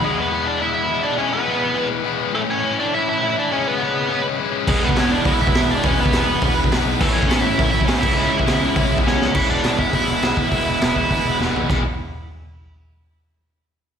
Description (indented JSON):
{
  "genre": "punk rock",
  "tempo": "206 BPM",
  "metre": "4/4",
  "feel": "straight",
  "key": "E mixolydian",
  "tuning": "A4 = 436 Hz",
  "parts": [
    { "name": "biting lead guitar", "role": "melody", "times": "0.0-11.4 s", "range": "G#3 to E5", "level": "-21 LUFS", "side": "right 2 dB", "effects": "overdrive, slapback echo, digital delay" },
    { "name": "distorted electric guitar", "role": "riff", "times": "0.0-11.8 s", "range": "A2 to E4", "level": "-23 LUFS", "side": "left 11 dB", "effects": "distortion, slapback echo" },
    { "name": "distorted electric guitar", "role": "riff", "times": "4.7-11.8 s", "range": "A2 to G#4", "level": "-24 LUFS", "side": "right 15 dB", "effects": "distortion, slapback echo" },
    { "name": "fuzz picked electric bass", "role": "bass", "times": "4.7-11.8 s", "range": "E1 to E2", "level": "-25 LUFS", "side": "equal", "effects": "overdrive" },
    { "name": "raw garage drum kit", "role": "drums", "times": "4.7-11.8 s", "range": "crash cymbal, hi-hat, kick drum, snare drum, toms", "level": "-21 LUFS", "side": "equal", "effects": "none" }
  ],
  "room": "light reverb",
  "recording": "live gig heard through the venue's PA, recital hall reverb",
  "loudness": "-16 LUFS",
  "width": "side -8 dB against mid",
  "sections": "0.0-9.3 A section; 9.3-11.7 B section; 11.7-12.9 C section",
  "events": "drum fill 9.1, 11.4",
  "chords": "0.0 E; 2.3 A; 3.4 C#m; 4.7 E; 7.0 A; 8.0 C#m; 9.3 E",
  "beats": "| 0.01 0.30 0.59 0.89 | 1.18 1.47 1.76 2.05 | 2.34 2.64 2.93 3.22 | 3.51 3.80 4.09 4.39 | 4.68 4.97 5.26 5.55 | 5.84 6.13 6.43 6.72 | 7.01 7.30 7.59 7.88 | 8.17 8.46 8.76 9.05 | 9.34 9.64 9.93 10.22 | 10.52 10.81 11.11 11.40 | 11.70"
}